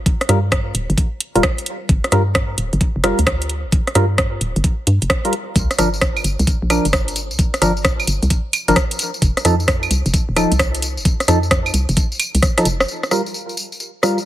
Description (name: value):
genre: UK garage, two-step garage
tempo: 131 BPM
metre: 4/4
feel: swing 66% on 16ths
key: G minor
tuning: A4 = 440 Hz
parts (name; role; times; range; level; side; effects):
- hollow knocking FM bass; bass; 0.0-12.9 s; D1 to G2; -19 LUFS; equal; tube saturation
- electronic kick drum; drums; 0.1-12.5 s; none; -18 LUFS; equal; none
- garage drum kit; drums; 0.1-14.2 s; claves, hi-hat, rim click, tambourine; -20 LUFS; equal; none
- percussive organ stab; stabs; 0.3-14.2 s; F3 to Bb4; -20 LUFS; equal; wide subtle chorus, tape echo
room: digital ambience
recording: heavily compressed radio sound, multiband compression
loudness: -15 LUFS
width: side -13 dB against mid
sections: 0.0-12.9 A section; 12.9-14.3 B section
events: drum fill 12.4-12.9; filter sweep on synth stab 12.9-14.3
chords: 0.0 Gm7; 5.6 C9sus4 (rootless); 9.0 F7; 12.9 Gm7